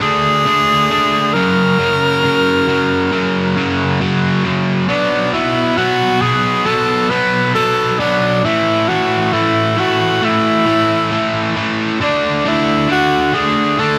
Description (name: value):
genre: rock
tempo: 68 BPM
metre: 4/4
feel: straight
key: A major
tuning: A4 = 440 Hz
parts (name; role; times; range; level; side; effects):
- breathy tenor saxophone; melody; 0.0-14.0 s; D4 to B4; -17 LUFS; equal; none
- distorted electric guitar; riff; 0.0-14.0 s; F#2 to D4; -18 LUFS; equal; distortion
room: light reverb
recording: none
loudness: -15 LUFS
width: mono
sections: 0.0-14.0 A section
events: none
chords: 0.0 D5; 1.3 F#; 4.9 B5; 8.4 A5; 12.0 D5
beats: 0.45 | 1.34 2.23 3.11 4.00 | 4.89 5.78 6.67 7.56 | 8.45 9.34 10.23 11.12 | 12.01 12.90 13.79